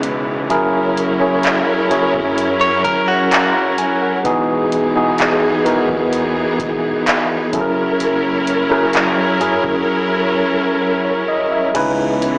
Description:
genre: contemporary R&B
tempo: 64 BPM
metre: 4/4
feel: straight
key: unclear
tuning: A4 = 441 Hz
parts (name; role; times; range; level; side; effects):
- bright tine electric piano; accompaniment; 0.0-12.4 s; C#3 to A#5; -19 LUFS; equal; none
- clear symphonic string section; sustained chords; 0.0-12.4 s; C#3 to A#4; -22 LUFS; equal; none
- saturated sub bass; bass; 0.0-12.3 s; E1 to F#2; -33 LUFS; equal; none
- booming analog drum machine; drums; 0.0-12.4 s; crash cymbal, handclaps, hi-hat, kick drum, rim click; -22 LUFS; equal; none
- downlifter; sound effects; 0.0-4.2 s; none; -36 LUFS; equal; none
- direct-recorded clean electric guitar; arpeggios; 2.6-4.2 s; F#4 to C#5; -19 LUFS; equal; tape echo
room: light reverb, digital ambience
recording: blown-out, overdriven recording, overdrive, small speaker sound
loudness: -16 LUFS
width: mono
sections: 0.0-11.8 A section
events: none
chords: 0.0 C#m7; 0.5 F#7; 4.2 Emaj7; 7.5 F#7; 11.8 C#m7

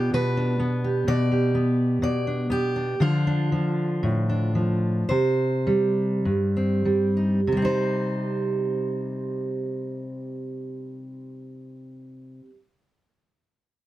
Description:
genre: folk, solo fingerstyle acoustic guitar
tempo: 48-66 BPM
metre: 4/4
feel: rubato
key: C dorian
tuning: A4 = 440 Hz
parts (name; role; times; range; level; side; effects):
- fingerpicked steel-string acoustic guitar; solo; 0.0-12.5 s; G2 to D5; -22 LUFS; equal; none
room: light reverb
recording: none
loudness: -22 LUFS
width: side -15 dB against mid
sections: 0.0-7.5 A section; 7.5-12.3 B section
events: slowing down 0.0-7.5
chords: 0.0 G/B; 3.0 Dm; 5.1 C5; 7.5 Cm

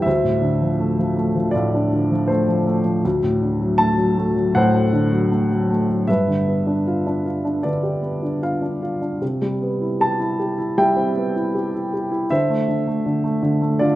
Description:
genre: classical, lyrical solo piano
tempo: 79 BPM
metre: 4/4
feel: rubato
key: D dorian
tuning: A4 = 441 Hz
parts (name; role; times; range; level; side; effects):
- dark grand piano; solo; 0.0-14.0 s; D2 to A5; -18 LUFS; equal; none
room: moderate recital hall reverb, RT60 1.5 s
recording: none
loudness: -18 LUFS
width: side -15 dB against mid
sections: 0.0-14.0 A section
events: none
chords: 0.1 Dm7; 3.0 D7; 6.1 G7; 9.2 Cmaj7; 12.3 D7(no3)

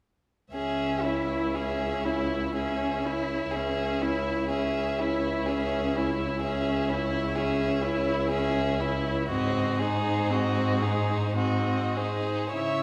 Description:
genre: classical, slow romantic movement for string quartet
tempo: 48-65 BPM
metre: 3/4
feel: rubato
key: C# minor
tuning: A4 = 440 Hz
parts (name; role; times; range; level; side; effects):
- warm violin; melody; 0.5-12.8 s; B#4 to E5; -36 LUFS; equal; none
- rich violin; second line; 0.5-12.8 s; E4 to C#5; -34 LUFS; equal; none
- clear viola; accompaniment; 0.5-12.8 s; B#3 to E4; -33 LUFS; equal; none
- rich cello; bass; 0.5-12.8 s; C#2 to C#3; -32 LUFS; equal; none
room: wet scoring stage reverb, RT60 2.0 s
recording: heard from further back in the room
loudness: -28 LUFS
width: mono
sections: 0.5-12.5 A section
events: none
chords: 0.5 C#m; 9.3 G#7

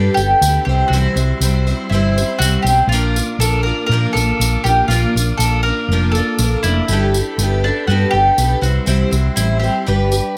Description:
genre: folk rock and heartland rock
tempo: 121 BPM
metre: 4/4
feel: straight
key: unclear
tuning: A4 = 439 Hz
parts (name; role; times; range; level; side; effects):
- mandolin; melody; 0.0-10.4 s; D4 to Bb4; -21 LUFS; equal; none
- picked twelve-string acoustic guitar; accompaniment; 0.0-10.4 s; Bb2 to C5; -23 LUFS; equal; none
- tonewheel organ; sustained chords; 0.0-10.4 s; G3 to D6; -29 LUFS; equal; slow rotary speaker, overdrive
- hollow-body short-scale fingered electric bass; bass; 0.0-10.2 s; F1 to Bb2; -19 LUFS; equal; none
- tambourine; percussion; 0.2-10.2 s; none; -27 LUFS; equal; none
room: light reverb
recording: none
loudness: -16 LUFS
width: mono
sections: 0.0-10.4 A section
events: none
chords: 0.0 Gadd9; 0.7 C; 2.9 Bb; 6.9 Gadd9; 8.6 C; 9.9 G

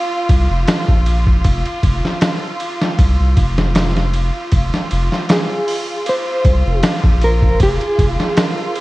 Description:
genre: trip hop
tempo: 78 BPM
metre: 4/4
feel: swing 54% on 16ths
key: F minor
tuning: A4 = 438 Hz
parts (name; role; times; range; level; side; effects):
- bright studio violin section; sustained chords; 0.0-8.8 s; F4; -24 LUFS; equal; vintage 12-bit sampler grit
- soft dub sub bass; bass; 0.3-8.2 s; F1 to C2; -16 LUFS; equal; tube saturation
- trip hop sampler-style drum kit; drums; 0.3-8.8 s; hi-hat, kick drum, ride cymbal, snare drum; -16 LUFS; equal; none
- mellow electric guitar; melody; 5.3-8.8 s; Ab4 to C5; -19 LUFS; equal; tremolo, tape echo
room: little or no reverb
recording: echo-heavy mix, vinyl crackle, nothing above 10.6 kHz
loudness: -13 LUFS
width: side -19 dB against mid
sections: 0.0-8.8 A section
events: none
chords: 0.0 Fsus4

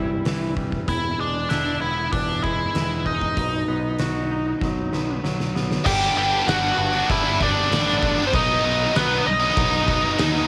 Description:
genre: quiet-loud alternative rock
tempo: 97 BPM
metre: 4/4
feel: straight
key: G major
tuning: A4 = 440 Hz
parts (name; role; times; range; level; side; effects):
- nasal lead guitar with a parked wah; melody; 0.0-10.5 s; B3 to G5; -25 LUFS; equal; overdrive
- twangy electric guitar; arpeggios; 0.0-5.9 s; E2 to F#4; -32 LUFS; equal; cassette tape
- picked electric bass; bass; 0.0-10.5 s; E1 to D#2; -31 LUFS; equal; none
- oversized low-tuned drum kit; drums; 0.3-10.4 s; crash cymbal, hi-hat, kick drum, snare drum; -29 LUFS; equal; cassette tape
- heavy high-gain guitar; riff; 5.8-10.5 s; G2 to D#4; -25 LUFS; equal; distortion, cassette tape
room: little or no reverb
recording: home recording on cassette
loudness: -22 LUFS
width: mono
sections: 0.0-5.9 A section; 5.9-10.5 B section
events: drum fill 4.6-5.9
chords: 0.0 C; 0.9 E; 3.4 B; 5.9 G; 8.3 B

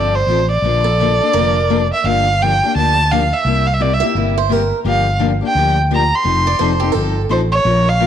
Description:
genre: acoustic string swing (jazz manouche)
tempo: 171 BPM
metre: 4/4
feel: swing 60% on 8ths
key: F major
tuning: A4 = 441 Hz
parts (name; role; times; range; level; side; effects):
- rich violin; melody; 0.0-8.1 s; C5 to C6; -16 LUFS; right 1 dB; none
- picked steel-string acoustic guitar; accompaniment; 0.0-8.1 s; C3 to Bb4; -20 LUFS; left 8 dB; none
- mellow fretless electric bass; bass; 0.0-8.1 s; F1 to D2; -18 LUFS; equal; none
- picked swing-style acoustic guitar; second line; 0.8-1.8, 4.0-7.2 s; G4 to E5; -22 LUFS; right 10 dB; none
room: moderate echo chamber reverb, RT60 1.6 s, studio reverb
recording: 1960s-style stereo with parts hard left and right, vinyl crackle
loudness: -13 LUFS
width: side -9 dB against mid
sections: 0.0-8.1 A section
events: none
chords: 0.0 F6; 0.6 Bbmaj7; 2.0 Gm9; 3.4 C7; 4.9 Gm7; 6.3 F7

